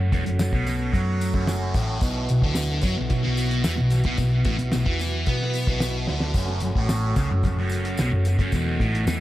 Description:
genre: psychedelic rock.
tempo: 111 BPM.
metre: 4/4.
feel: straight.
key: F# minor.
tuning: A4 = 440 Hz.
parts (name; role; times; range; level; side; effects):
percussive tonewheel organ; sustained chords; 0.0-9.2 s; F#3 to F#4; -33 LUFS; right 3 dB; slow rotary speaker.
thick fuzz guitar; riff; 0.0-9.2 s; E2 to B3; -24 LUFS; equal; distortion, phaser, dub echo.
hollow-body short-scale picked electric bass; bass; 0.0-9.2 s; E1 to B2; -26 LUFS; equal; none.
cloth-damped thuddy drum kit; drums; 0.1-9.2 s; hi-hat, kick drum, snare drum; -26 LUFS; equal; dub echo.
tambourine; percussion; 0.1-9.2 s; none; -43 LUFS; left 4 dB; dub echo.
room: light reverb, small room ambience.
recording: echo-heavy mix.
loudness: -21 LUFS.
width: side -15 dB against mid.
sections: 0.0-9.2 A section.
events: drum fill 6.1.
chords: 0.0 F#m; 2.0 Bsus4; 6.4 F#m.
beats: 0.39 0.93 1.48 | 2.02 2.56 3.10 3.65 | 4.19 4.73 5.27 5.82 | 6.36 6.90 7.44 7.99 | 8.53 9.07.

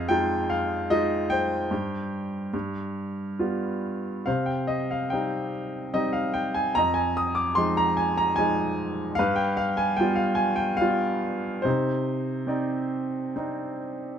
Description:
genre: classical, lyrical solo piano.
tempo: 72 BPM.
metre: 3/4.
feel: uneven beats, rubato.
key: C minor.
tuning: A4 = 440 Hz.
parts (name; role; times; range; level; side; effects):
clear baby grand piano; solo; 0.0-14.2 s; F2 to Eb6; -24 LUFS; equal; none.
room: light reverb.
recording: minimal, uncompressed stereo recording.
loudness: -24 LUFS.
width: side -8 dB against mid.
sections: 0.0-14.2 A section.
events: none.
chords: 0.0 Fm7; 1.7 Gsus4; 2.5 G7; 4.3 Cm; 6.8 Fm7; 9.2 G7; 11.7 Cmadd9.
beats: 0.10 0.91 | 1.71 2.54 3.39 | 4.26 5.11 5.94 | 6.76 7.58 8.38 | 9.19 9.99 10.82 | 11.65 12.49 13.37.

